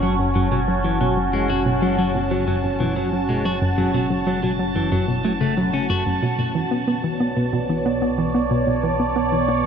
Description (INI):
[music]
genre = ambient, sequencer-driven space music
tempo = 92 BPM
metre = 4/4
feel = straight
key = F# minor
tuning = A4 = 440 Hz
[part]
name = evolving wavetable pad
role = sustained chords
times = 0.0-9.7 s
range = B2 to A5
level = -22 LUFS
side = right 1 dB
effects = phaser, built-in reverb
[part]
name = clean electric guitar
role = arpeggios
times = 0.0-6.0 s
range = F#2 to F#4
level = -26 LUFS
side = left 3 dB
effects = auto-pan, tape echo
[part]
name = hollow square pluck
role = riff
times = 0.0-9.6 s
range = F#2 to B3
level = -22 LUFS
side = right 1 dB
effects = chorus, tape echo
[part]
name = analog drone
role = bass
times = 0.0-9.7 s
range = F#1 to B1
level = -29 LUFS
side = equal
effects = chorus
[sound]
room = wet huge ambient reverb, RT60 8.2 s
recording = in a vast, echoing space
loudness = -18 LUFS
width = side -7 dB against mid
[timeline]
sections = 0.0-6.2 A section; 6.2-9.7 B section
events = none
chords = 0.0 F#m; 6.2 Bm7